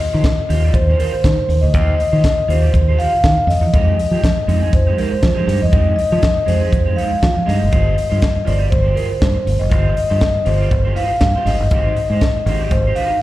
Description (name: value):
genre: disco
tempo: 120 BPM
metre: 4/4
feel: swing 56% on 16ths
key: Eb major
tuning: A4 = 441 Hz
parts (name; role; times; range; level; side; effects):
- vibraphone with soft mallets; melody; 0.0-13.2 s; Bb4 to F5; -19 LUFS; left 1 dB; slapback echo
- electric guitar at the edge of break-up; accompaniment; 0.0-13.2 s; Ab3 to D5; -26 LUFS; right 5 dB; analog chorus, slapback echo
- tight funk drum kit; drums; 0.0-13.1 s; hi-hat, kick drum, snare drum; -18 LUFS; equal; none
- fingered electric bass; bass; 0.1-12.9 s; Gb1 to F3; -16 LUFS; equal; none
room: studio reverb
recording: live gig heard through the venue's PA, recital hall reverb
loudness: -13 LUFS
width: side -16 dB against mid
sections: 0.0-13.2 A section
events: none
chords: 0.0 Eb69; 3.5 Fm9; 7.7 Eb69/G; 11.5 Abmaj7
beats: 0.23 0.73 1.23 | 1.73 2.23 2.73 3.23 | 3.73 4.23 4.73 5.23 | 5.73 6.23 6.72 7.22 | 7.72 8.22 8.72 9.22 | 9.72 10.22 10.72 11.22 | 11.72 12.21 12.71 13.21